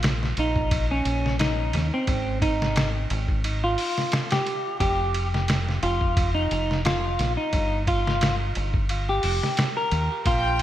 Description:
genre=trip hop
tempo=88 BPM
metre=4/4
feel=swing 54% on 16ths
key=unclear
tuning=A4 = 440 Hz
part: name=deep dub fingered electric bass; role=bass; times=0.0-10.6 s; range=F1 to Eb2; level=-26 LUFS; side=equal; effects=none
part: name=trip hop sampler-style drum kit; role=drums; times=0.0-10.6 s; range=hi-hat, kick drum, ride cymbal, snare drum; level=-26 LUFS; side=equal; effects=gated reverb
part: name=semi-hollow electric guitar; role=melody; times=0.4-10.6 s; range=C4 to Bb4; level=-26 LUFS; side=equal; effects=analog chorus, tape echo
part: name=rich studio violin section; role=sustained chords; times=10.3-10.6 s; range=G5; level=-26 LUFS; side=right 2 dB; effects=none
room=moderate plate reverb, RT60 2.9 s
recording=bright 1980s-style digital production, vinyl crackle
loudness=-22 LUFS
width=side -12 dB against mid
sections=0.0-10.6 A section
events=none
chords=0.0 Bbmadd11; 2.1 Ab5; 4.8 F7(no3); 7.5 N.C.

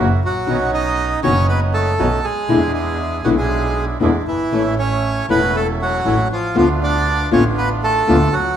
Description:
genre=tango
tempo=119 BPM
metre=4/4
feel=rubato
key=unclear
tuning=A4 = 440 Hz
part: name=nylon-string guitar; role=accompaniment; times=0.0-8.2 s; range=B2 to F#4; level=-19 LUFS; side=left 4 dB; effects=none
part: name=bandoneon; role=stabs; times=0.0-8.3 s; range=G#3 to F#4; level=-24 LUFS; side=right 3 dB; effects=none
part: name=clear double bass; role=bass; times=0.0-8.6 s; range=E1 to E2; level=-21 LUFS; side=right 1 dB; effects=none
part: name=bandoneon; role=melody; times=0.2-8.6 s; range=E3 to D#5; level=-19 LUFS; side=right 2 dB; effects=none
room=moderate large studio reverb, RT60 1.4 s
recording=minimal, uncompressed stereo recording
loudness=-15 LUFS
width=side -9 dB against mid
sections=0.0-8.6 A section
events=none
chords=0.5 Badd9; 2.5 E7; 4.5 A; 6.6 Dm6

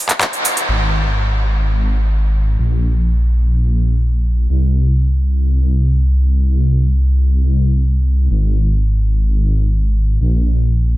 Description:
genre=EDM, festival progressive house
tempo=free time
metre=none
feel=none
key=unclear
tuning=A4 = 440 Hz
part: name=big-room dance drum kit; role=drums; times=0.1-0.7 s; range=handclaps, hi-hat, shaker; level=-18 LUFS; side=equal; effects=studio reverb
part: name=wide detuned saw bass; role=bass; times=0.7-11.0 s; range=Ab1 to C2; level=-13 LUFS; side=equal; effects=chorus
room=little or no reverb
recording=dense, heavily limited modern master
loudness=-13 LUFS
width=side -17 dB against mid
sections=0.7-11.0 A section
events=break 0.0-0.7; band accent 0.2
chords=none

